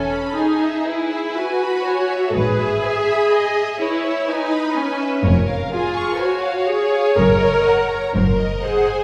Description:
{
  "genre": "classical, slow romantic movement for string orchestra",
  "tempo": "62 BPM",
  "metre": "3/4",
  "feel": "rubato",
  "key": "E major, Db major from 5.2 s",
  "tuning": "A4 = 441 Hz",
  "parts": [
    { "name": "rich studio violin section", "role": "melody", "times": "0.0-9.0 s", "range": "B4 to Db6", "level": "-30 LUFS", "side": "equal", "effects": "none" },
    { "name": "rich studio violin section", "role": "second line", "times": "0.0-9.0 s", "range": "G#4 to E5", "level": "-27 LUFS", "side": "equal", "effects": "none" },
    { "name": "rich studio viola section", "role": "accompaniment", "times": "0.0-9.0 s", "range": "C#4 to Bb4", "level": "-21 LUFS", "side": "equal", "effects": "none" },
    { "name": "bright studio double bass section", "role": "bass", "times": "0.0-8.9 s", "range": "E1 to G#1", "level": "-26 LUFS", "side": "equal", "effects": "none" },
    { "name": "rich studio cello section", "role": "bass", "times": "0.0-8.9 s", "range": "E2 to G#2", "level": "-25 LUFS", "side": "equal", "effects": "none" }
  ],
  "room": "wet scoring stage reverb, RT60 1.8 s",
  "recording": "heard from further back in the room",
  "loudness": "-19 LUFS",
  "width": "mono",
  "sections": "0.0-9.0 A section",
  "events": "none",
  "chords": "0.0 E; 2.4 E/G#; 5.2 Db/F; 7.2 Ebm7/Gb; 8.1 Ab7/Gb",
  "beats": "0.34 1.36 | 2.36 3.33 4.29 | 5.25 6.21 7.17 | 8.15"
}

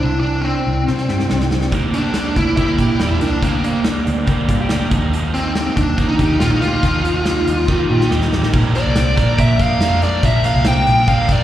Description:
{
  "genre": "jangly indie pop",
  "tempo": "141 BPM",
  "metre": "4/4",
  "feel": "straight",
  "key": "unclear",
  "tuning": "A4 = 440 Hz",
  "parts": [
    { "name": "smooth overdriven lead guitar", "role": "melody", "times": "0.0-11.4 s", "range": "Bb3 to G5", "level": "-19 LUFS", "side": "equal", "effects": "slapback echo, tape echo" },
    { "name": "electric guitar through a small old amp", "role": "arpeggios", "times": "0.0-11.4 s", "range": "E3 to G4", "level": "-23 LUFS", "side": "left 1 dB", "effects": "analog chorus, slapback echo" },
    { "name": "vintage muted picked electric bass", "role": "bass", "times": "0.0-11.4 s", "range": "A1 to Eb3", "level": "-18 LUFS", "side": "equal", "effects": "none" },
    { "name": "big rock drum kit", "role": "drums", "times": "0.9-11.4 s", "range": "crash cymbal, hi-hat, kick drum, snare drum", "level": "-20 LUFS", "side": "equal", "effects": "none" },
    { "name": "crunchy overdriven guitar", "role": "accompaniment", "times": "1.7-11.4 s", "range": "Bb2 to Bb4", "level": "-24 LUFS", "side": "right 5 dB", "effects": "slapback echo" }
  ],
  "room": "small room ambience",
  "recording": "live gig heard through the venue's PA, recital hall reverb",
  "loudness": "-14 LUFS",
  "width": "side -12 dB against mid",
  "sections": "0.0-8.5 A section; 8.5-11.4 B section",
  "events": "drum fill 0.9-1.7, 7.7-8.5",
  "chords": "0.0 Cadd9; 1.7 Gm; 4.9 Ebadd9; 8.5 Bb",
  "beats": "| 0.03 0.45 0.88 1.30 | 1.73 2.15 2.58 3.00 | 3.43 3.85 4.28 4.70 | 5.13 5.55 5.98 6.41 | 6.83 7.26 7.68 8.11 | 8.53 8.96 9.38 9.81 | 10.23 10.66 11.08"
}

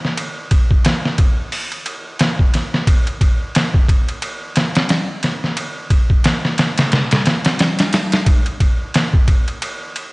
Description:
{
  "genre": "trip hop",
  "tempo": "89 BPM",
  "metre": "4/4",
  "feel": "swing 58% on 16ths",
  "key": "none",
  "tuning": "none",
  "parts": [
    { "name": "trip hop sampler-style drum kit", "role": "drums", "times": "0.0-10.1 s", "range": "hi-hat, kick drum, ride cymbal, snare drum", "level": "-14 LUFS", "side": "equal", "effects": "none" }
  ],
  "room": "light reverb",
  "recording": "dry, gritty hardware recording, vinyl crackle, nothing above 10.6 kHz",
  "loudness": "-14 LUFS",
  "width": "side -26 dB against mid",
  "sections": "0.0-8.3 A section; 8.3-10.1 B section",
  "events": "none",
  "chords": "none",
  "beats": "| 0.17 0.85 1.52 2.20 | 2.87 3.54 4.22 4.89 | 5.57 6.24 6.92 7.59 | 8.26 8.94 9.61"
}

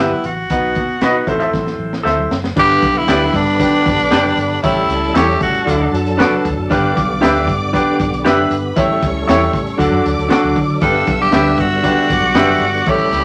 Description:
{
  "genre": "uptempo 1960s-style soul",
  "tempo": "116 BPM",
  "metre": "4/4",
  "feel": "straight",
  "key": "G major",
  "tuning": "A4 = 440 Hz",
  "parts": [
    { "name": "raspy tenor saxophone", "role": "melody", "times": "0.0-5.9, 10.8-13.2 s", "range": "D4 to A4", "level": "-19 LUFS", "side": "equal", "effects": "none" },
    { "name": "clear baby grand piano", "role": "accompaniment", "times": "0.0-13.2 s", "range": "G2 to E5", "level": "-20 LUFS", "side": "equal", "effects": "none" },
    { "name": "electric guitar through a small old amp", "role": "stabs", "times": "0.0-12.5 s", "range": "E4 to E5", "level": "-21 LUFS", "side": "equal", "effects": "warbly pitch drift" },
    { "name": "vintage muted fingered electric bass", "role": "bass", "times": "0.0-13.2 s", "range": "F#1 to D3", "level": "-25 LUFS", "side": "equal", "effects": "none" },
    { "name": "congas", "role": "percussion", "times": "0.1-13.1 s", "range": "none", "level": "-34 LUFS", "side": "equal", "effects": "none" },
    { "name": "crunchy breakbeat drum kit", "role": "drums", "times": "0.2-13.2 s", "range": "crash cymbal, hi-hat, kick drum, snare drum", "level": "-23 LUFS", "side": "equal", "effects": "none" },
    { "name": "bright studio string section", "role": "second line", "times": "2.6-13.2 s", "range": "A4 to E6", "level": "-28 LUFS", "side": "equal", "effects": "none" },
    { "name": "tonewheel organ", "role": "sustained chords", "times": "2.6-13.2 s", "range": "D3 to A4", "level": "-26 LUFS", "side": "equal", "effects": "chorus vibrato, fast rotary speaker" }
  ],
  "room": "wet studio reverb, RT60 0.6 s",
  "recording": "none",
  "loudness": "-15 LUFS",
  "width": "mono",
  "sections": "0.0-2.6 A section; 2.6-13.2 B section",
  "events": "drum fill 1.5-2.6",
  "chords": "0.0 Em; 0.5 B; 1.3 Am; 2.6 G; 4.6 A7; 5.7 D; 6.7 G; 8.8 A7; 9.8 D; 10.8 G",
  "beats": "| 0.50 1.02 1.54 2.06 | 2.57 3.09 3.60 4.12 | 4.64 5.15 5.67 6.18 | 6.70 7.21 7.73 8.24 | 8.76 9.27 9.79 10.30 | 10.81 11.33 11.84 12.36 | 12.87"
}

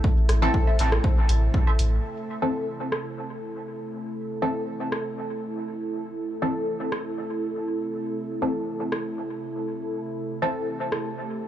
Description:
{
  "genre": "dub techno",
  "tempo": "120 BPM",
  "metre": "4/4",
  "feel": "straight",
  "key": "A minor",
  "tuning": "A4 = 440 Hz",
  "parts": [
    { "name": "warbly tape-like pad", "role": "sustained chords", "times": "0.0-11.5 s", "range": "C3 to E5", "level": "-31 LUFS", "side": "right 1 dB", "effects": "chorus, built-in reverb, phaser, sidechain pumping" },
    { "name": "filtered dub chord stab", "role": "stabs", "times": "0.0-11.5 s", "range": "E3 to A4", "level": "-30 LUFS", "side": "equal", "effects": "chorus, phaser, dub echo" },
    { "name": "electronic kick drum", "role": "drums", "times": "0.0-1.6 s", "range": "none", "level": "-22 LUFS", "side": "equal", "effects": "none" },
    { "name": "bubbling stepped-filter texture", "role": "texture", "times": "0.0-2.1 s", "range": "A4", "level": "-43 LUFS", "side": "right 4 dB", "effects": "none" },
    { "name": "warm sub bass", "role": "bass", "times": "0.3-2.0 s", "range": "A1", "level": "-22 LUFS", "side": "equal", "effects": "transformer saturation, sidechain pumping" },
    { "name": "punchy analog drum machine", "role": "drums", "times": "0.3-11.0 s", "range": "hi-hat, rim click", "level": "-31 LUFS", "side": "equal", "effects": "low-pass filter on snare, low-pass filter on hats, dub echo" },
    { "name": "filtered dub chord stab", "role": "riff", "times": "0.7-1.8 s", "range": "A4 to E5", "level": "-37 LUFS", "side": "left 1 dB", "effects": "phaser, lush chorus, cassette tape, sidechain pumping, dub echo" }
  ],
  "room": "light reverb",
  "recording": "dry, gritty hardware recording",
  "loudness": "-24 LUFS",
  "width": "side -11 dB against mid",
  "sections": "0.0-2.0 A section; 2.0-11.5 B section",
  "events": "none",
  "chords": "0.0 Am",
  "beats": "| 0.04 0.54 1.04 1.54 | 2.04 2.54 3.04 3.54 | 4.04 4.54 5.04 5.54 | 6.04 6.54 7.04 7.54 | 8.04 8.54 9.04 9.54 | 10.04 10.54 11.04"
}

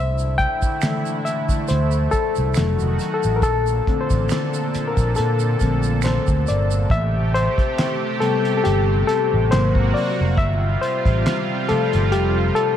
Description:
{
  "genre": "R&B, neo-soul",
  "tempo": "69 BPM",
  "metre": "4/4",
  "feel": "swing 55% on 16ths",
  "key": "A minor",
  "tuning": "A4 = 438 Hz",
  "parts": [
    { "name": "barky reed electric piano", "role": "accompaniment", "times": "0.0-12.8 s", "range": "C3 to G5", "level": "-21 LUFS", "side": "left 4 dB", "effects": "overdrive" },
    { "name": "lush unison pad", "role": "sustained chords", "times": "0.0-12.8 s", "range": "Bb2 to A4", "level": "-25 LUFS", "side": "right 3 dB", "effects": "chorus" },
    { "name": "fingered electric bass", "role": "bass", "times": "0.0-12.5 s", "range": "F1 to Bb2", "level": "-20 LUFS", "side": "equal", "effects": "none" },
    { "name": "tube shaker and finger snaps", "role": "percussion", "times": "0.2-6.9 s", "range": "none", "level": "-36 LUFS", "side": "right 12 dB", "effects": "none" },
    { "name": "cloth-damped thuddy drum kit", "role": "drums", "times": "0.4-12.8 s", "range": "handclaps, hi-hat, kick drum, snare drum", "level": "-23 LUFS", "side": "equal", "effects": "none" }
  ],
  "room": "moderate plate reverb, RT60 2.3 s",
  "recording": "dreamy mix soaked in reverb, vinyl crackle",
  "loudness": "-17 LUFS",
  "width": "side -10 dB against mid",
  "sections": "0.0-6.9 A section; 6.9-12.8 B section",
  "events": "reed electric piano solo 0.0-6.9, 6.9-12.8",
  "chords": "0.0 C69; 2.6 F7b9; 3.4 Bbmaj7; 6.9 Am9; 9.5 G#9; 10.4 G7sus4",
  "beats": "0.81 1.68 2.55 | 3.42 4.29 5.16 6.03 | 6.90 7.77 8.64 9.51 | 10.38 11.25 12.12"
}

